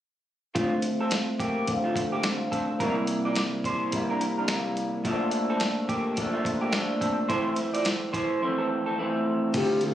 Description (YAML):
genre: indie pop, bedroom pop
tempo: 107 BPM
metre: 4/4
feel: swing 60% on 16ths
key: unclear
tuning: A4 = 440 Hz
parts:
  - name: electric guitar through a small old amp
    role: second line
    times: 0.5-9.0 s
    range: A3 to D5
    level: -30 LUFS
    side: right 2 dB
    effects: wide subtle chorus, slapback echo
  - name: electric guitar through a small old amp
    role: accompaniment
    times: 0.6-9.9 s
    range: F2 to F4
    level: -27 LUFS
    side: equal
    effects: wide subtle chorus, warbly pitch drift, low-pass filter
  - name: dusty soul sampler-style drum kit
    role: drums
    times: 0.6-9.9 s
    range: crash cymbal, hi-hat, kick drum, snare drum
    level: -31 LUFS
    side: equal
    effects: none
  - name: reed electric piano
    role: accompaniment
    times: 9.5-9.9 s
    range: C4 to A4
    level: -32 LUFS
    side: right 3 dB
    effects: fast tremolo, cassette tape
  - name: vintage muted fingered electric bass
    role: bass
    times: 9.5-9.9 s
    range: D2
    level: -33 LUFS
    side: equal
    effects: none
  - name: warbly nostalgic lead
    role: melody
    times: 9.6-9.9 s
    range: G4 to A4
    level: -25 LUFS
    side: left 2 dB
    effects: analog chorus, slapback echo
room: moderate small room ambience, RT60 0.5 s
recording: recorded on a phone in the room, studio reverb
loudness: -24 LUFS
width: side -11 dB against mid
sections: 0.6-9.5 A section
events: filter sweep on clean electric guitar 0.6-9.5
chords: 0.6 Dm7; 2.8 C7; 5.0 Bbmaj7; 7.3 Fmaj7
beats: | 0.56 1.12 1.68 2.24 | 2.80 3.36 3.92 4.49 | 5.05 5.61 6.17 6.73 | 7.29 7.86 8.42 8.98 | 9.54